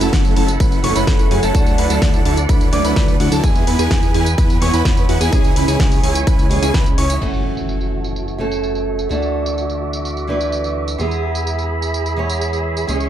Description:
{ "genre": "EDM, festival progressive house", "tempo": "127 BPM", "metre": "4/4", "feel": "straight", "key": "F# minor", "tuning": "A4 = 436 Hz", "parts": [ { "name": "picked old ladder-braced acoustic guitar", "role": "accompaniment", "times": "0.0-13.1 s", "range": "E3 to C#5", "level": "-23 LUFS", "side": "right 2 dB", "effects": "sidechain pumping, digital delay" }, { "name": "muted studio string section", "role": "sustained chords", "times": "0.0-13.1 s", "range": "E4 to D6", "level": "-26 LUFS", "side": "right 3 dB", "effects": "sidechain pumping, low-pass filter" }, { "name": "bright concert grand piano", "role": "arpeggios", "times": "0.0-7.2 s", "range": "F#5 to D6", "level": "-25 LUFS", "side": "right 2 dB", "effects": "sidechain pumping, digital delay" }, { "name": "supersaw chords", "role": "riff", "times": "0.0-7.2 s", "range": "F#3 to D5", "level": "-21 LUFS", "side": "equal", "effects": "phaser, sidechain pumping, low-pass filter, digital delay" }, { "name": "fat analog bass", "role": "bass", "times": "0.0-13.1 s", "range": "F#1 to F#2", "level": "-21 LUFS", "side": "equal", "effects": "sidechain pumping" }, { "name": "big-room dance drum kit", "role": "drums", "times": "0.0-13.1 s", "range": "crash cymbal, hi-hat, snare drum, tambourine", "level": "-26 LUFS", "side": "equal", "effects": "low-pass filter on hats, low-pass filter on cymbals, low-pass filter on perc, low-pass filter on snare" }, { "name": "electronic kick drum", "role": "drums", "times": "0.1-6.8 s", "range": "none", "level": "-16 LUFS", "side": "equal", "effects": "none" }, { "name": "impact", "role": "sound effects", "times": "7.2-9.1 s", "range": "none", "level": "-28 LUFS", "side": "left 1 dB", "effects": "none" } ], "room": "little or no reverb", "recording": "dark, warm production", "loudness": "-14 LUFS", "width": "side -11 dB against mid", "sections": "0.0-7.2 A section; 7.2-13.1 B section", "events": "drop 0.0-7.2; impact 7.2-9.1; filter sweep on string section 7.2-13.1", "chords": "0.0 F#m7; 1.5 Dadd9; 3.4 E; 5.3 C#m; 7.2 F#m7; 9.1 Dadd9; 11.0 E" }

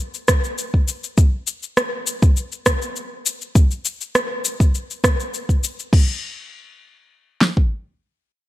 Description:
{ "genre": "organic downtempo", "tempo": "101 BPM", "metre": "4/4", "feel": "straight", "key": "none", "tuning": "none", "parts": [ { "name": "afro-pop drum kit", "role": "drums", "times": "0.1-6.1 s", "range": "cabasa, crash cymbal, rim click", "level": "-22 LUFS", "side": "equal", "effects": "studio ambience" }, { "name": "deep house drum kit", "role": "drums", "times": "0.3-7.7 s", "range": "kick drum, snare drum", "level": "-15 LUFS", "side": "equal", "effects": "studio ambience" } ], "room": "light reverb", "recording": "none", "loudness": "-18 LUFS", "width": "side -16 dB against mid", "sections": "0.0-5.9 A section; 5.9-8.3 B section", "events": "none", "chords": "none" }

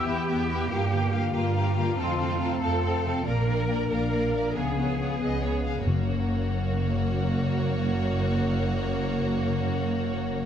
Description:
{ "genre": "cinematic, heroic adventure film score", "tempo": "94 BPM (dotted quarters)", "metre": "12/8", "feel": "straight", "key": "Gb major from 5.9 s", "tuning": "A4 = 441 Hz", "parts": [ { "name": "warm symphonic violin section", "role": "melody", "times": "0.0-10.5 s", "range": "Db5 to F5", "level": "-38 LUFS", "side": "left 4 dB", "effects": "none" }, { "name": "mellow flute section", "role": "second line", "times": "0.0-5.2 s", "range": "E5 to C6", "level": "-35 LUFS", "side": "left 1 dB", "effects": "none" }, { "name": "rich symphonic violin section", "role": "second line", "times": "0.0-10.5 s", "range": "Gb4 to Bb4", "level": "-35 LUFS", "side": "left 1 dB", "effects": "none" }, { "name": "rich symphonic viola section", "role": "accompaniment", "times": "0.0-10.5 s", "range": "Bb3 to C4", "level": "-32 LUFS", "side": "left 1 dB", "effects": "none" }, { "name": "mellow French horn section", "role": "sustained chords", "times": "0.0-5.6 s", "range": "A3 to F4", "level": "-34 LUFS", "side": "left 4 dB", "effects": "none" }, { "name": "concert harp", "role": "arpeggios", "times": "0.0-10.5 s", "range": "F2 to B4", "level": "-34 LUFS", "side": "left 9 dB", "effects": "none" }, { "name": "clear symphonic cello section", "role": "bass", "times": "0.0-10.5 s", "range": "Gb2 to Bb4", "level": "-32 LUFS", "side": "right 2 dB", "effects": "none" }, { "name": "rich symphonic double bass section", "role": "bass", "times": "0.1-10.5 s", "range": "Gb1 to G2", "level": "-29 LUFS", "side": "right 3 dB", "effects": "none" }, { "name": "dark trombone section", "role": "sustained chords", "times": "5.9-10.5 s", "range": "Gb3 to Bb3", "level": "-34 LUFS", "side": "right 3 dB", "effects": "none" }, { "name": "timpani", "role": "percussion", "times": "5.9-6.5 s", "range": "Gb2", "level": "-29 LUFS", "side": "left 2 dB", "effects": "none" } ], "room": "moderate scoring stage reverb, RT60 2.0 s", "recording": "dark, warm production, nothing above 10.4 kHz", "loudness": "-24 LUFS", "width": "side -9 dB against mid", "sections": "0.0-5.9 A section; 5.9-10.5 B section", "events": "none", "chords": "0.0 Em; 0.7 Gm7; 2.0 F; 3.3 Bb; 4.6 Db7; 5.9 Gb" }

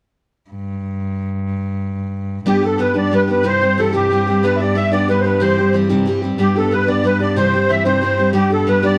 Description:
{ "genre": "celtic folk, Celtic jig", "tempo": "122 BPM (dotted quarters)", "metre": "6/8", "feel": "straight", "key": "G major", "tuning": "A4 = 440 Hz", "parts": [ { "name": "clear cello", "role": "drone", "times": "0.5-9.0 s", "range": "G2", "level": "-24 LUFS", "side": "equal", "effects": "none" }, { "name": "musette accordion", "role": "melody", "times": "2.5-9.0 s", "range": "G4 to E5", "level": "-19 LUFS", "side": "equal", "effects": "none" }, { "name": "picked steel-string acoustic guitar", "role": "accompaniment", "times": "2.5-9.0 s", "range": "C3 to G4", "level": "-20 LUFS", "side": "equal", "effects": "none" } ], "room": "moderate studio reverb, RT60 0.5 s", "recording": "worn, warbling old tape, cassette tape, warbly pitch drift", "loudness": "-17 LUFS", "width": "mono", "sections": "0.5-2.5 A section; 2.5-9.0 B section", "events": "none", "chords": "0.5 N.C.; 2.5 G; 3.4 C; 4.4 G; 5.4 C; 6.4 G; 7.4 C; 8.3 G" }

